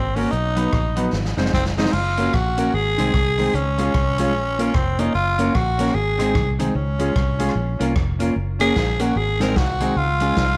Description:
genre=ska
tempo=149 BPM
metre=4/4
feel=swing 61% on 8ths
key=Ab mixolydian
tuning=A4 = 440 Hz
part: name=growling tenor saxophone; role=melody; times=0.0-10.6 s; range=C4 to Bb4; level=-25 LUFS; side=equal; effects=none
part: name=fingered electric bass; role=bass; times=0.0-10.6 s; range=F1 to Db2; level=-26 LUFS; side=equal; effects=none
part: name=mellow electric guitar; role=accompaniment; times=0.2-10.3 s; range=Eb3 to Gb4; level=-27 LUFS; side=equal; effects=none
part: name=clear upright piano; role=stabs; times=0.2-10.3 s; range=C4 to C5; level=-31 LUFS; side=equal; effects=none
part: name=swinging big-band drum kit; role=drums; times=0.2-10.5 s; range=crash cymbal, hi-hat, kick drum, rim click, snare drum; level=-27 LUFS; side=equal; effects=none
room=moderate echo chamber reverb, RT60 1.4 s, small room ambience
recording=none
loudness=-20 LUFS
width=mono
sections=0.0-1.9 A section; 1.9-10.6 B section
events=drum fill 1.1-1.9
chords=0.3 B; 1.1 Ab; 1.9 Gb; 2.7 Ab; 3.5 Db; 4.3 Bbm; 5.1 Gb; 6.0 Ab; 6.8 Db; 7.6 Bbm; 8.4 Gb; 9.2 Ab; 10.0 Db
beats=| 0.32 0.73 1.13 1.53 | 1.93 2.34 2.74 3.14 | 3.54 3.94 4.35 4.75 | 5.15 5.55 5.95 6.35 | 6.75 7.16 7.56 7.96 | 8.36 8.76 9.16 9.56 | 9.97 10.37

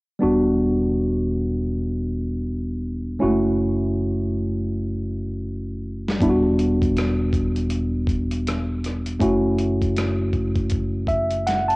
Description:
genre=R&B, neo-soul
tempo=80 BPM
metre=4/4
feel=swing 60% on 16ths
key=E dorian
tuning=A4 = 440 Hz
part: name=tine electric piano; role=accompaniment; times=0.2-11.8 s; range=G3 to A5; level=-22 LUFS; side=equal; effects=none
part: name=deep dub fingered electric bass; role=bass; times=0.2-11.8 s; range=E1 to F#1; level=-26 LUFS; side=equal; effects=none
part: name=dusty soul sampler-style drum kit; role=drums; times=6.1-11.8 s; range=hi-hat, kick drum, rim click, snare drum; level=-26 LUFS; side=equal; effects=overdrive, cassette tape
room=light reverb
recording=home recording on cassette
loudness=-20 LUFS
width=side -23 dB against mid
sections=0.2-11.8 A section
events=drum fill 4.7-6.2, 11.5-11.8; tine electric piano fill 10.7-11.8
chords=0.2 Em9; 3.2 F#m7; 6.2 Em9; 9.2 F#m7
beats=| 0.20 0.95 1.71 2.46 | 3.21 3.96 4.71 5.46 | 6.21 6.96 7.71 8.46 | 9.21 9.96 10.71 11.46

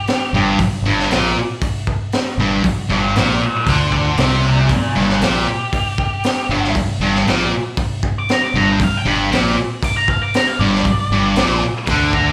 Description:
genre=garage rock duo or trio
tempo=117 BPM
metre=4/4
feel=straight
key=unclear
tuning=A4 = 440 Hz
part: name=octave-fuzz lead guitar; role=melody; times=0.0-12.3 s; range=F4 to D6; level=-23 LUFS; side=equal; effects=distortion
part: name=raw garage drum kit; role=drums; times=0.1-12.3 s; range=hi-hat, kick drum, snare drum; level=-23 LUFS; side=equal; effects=none
part: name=thick fuzz guitar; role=riff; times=0.3-12.3 s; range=G2 to D3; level=-19 LUFS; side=equal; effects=distortion, slapback echo
part: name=growling fingered electric bass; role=bass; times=0.3-12.3 s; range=G1 to D2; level=-23 LUFS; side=equal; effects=overdrive, tube saturation
room=small room ambience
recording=live gig heard through the venue's PA, club reverb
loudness=-17 LUFS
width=mono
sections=0.0-12.3 A section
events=lead electric guitar solo 0.0-12.3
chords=0.0 G5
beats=0.08 | 0.60 1.11 1.62 2.13 | 2.64 3.16 3.67 4.18 | 4.69 5.21 5.72 6.23 | 6.74 7.26 7.77 8.28 | 8.80 9.31 9.82 10.34 | 10.85 11.36 11.88

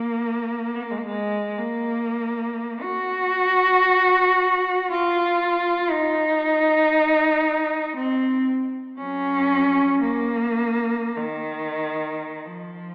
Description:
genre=classical, free, expressive piece for unaccompanied cello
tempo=44-60 BPM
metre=3/4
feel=rubato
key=unclear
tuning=A4 = 439 Hz
part: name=rich cello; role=solo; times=0.0-12.9 s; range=Eb3 to Gb4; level=-22 LUFS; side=equal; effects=none
room=wet concert hall reverb, RT60 2.0 s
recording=heard from further back in the room, AM radio sound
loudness=-22 LUFS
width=mono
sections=0.0-12.9 A section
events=none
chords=none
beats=0.56 1.58 | 2.81 3.88 4.91 | 5.92 6.96 7.97 | 9.00 10.02 11.17 | 12.44

